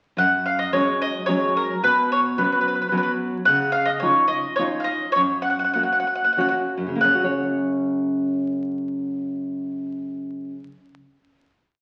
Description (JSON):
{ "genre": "italian folk, Italian serenade", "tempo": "90-110 BPM", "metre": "3/4", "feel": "straight", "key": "F# major", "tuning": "A4 = 440 Hz", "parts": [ { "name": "bowl-back mandolin", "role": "melody", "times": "0.2-10.7 s", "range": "A#4 to F#5", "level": "-22 LUFS", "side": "equal", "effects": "none" }, { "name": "nylon-string guitar", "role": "accompaniment", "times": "0.2-11.0 s", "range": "F#2 to C#5", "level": "-27 LUFS", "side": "equal", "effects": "none" } ], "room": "wet large studio reverb, RT60 1.4 s", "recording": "very old 78 rpm record, vinyl crackle", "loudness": "-22 LUFS", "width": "mono", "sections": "0.2-7.0 A section; 7.0-10.9 final chord", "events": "slowing down 3.5-7.0", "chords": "0.2 F#sus2; 1.8 Bsus2; 3.5 C#add9; 5.2 F#", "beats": "| 0.17 0.73 1.28 | 1.83 2.38 2.93 | 3.48 4.03 4.58 | 5.15 5.74 6.36 | 7.00 7.66 8.31 | 8.96 9.61 10.27" }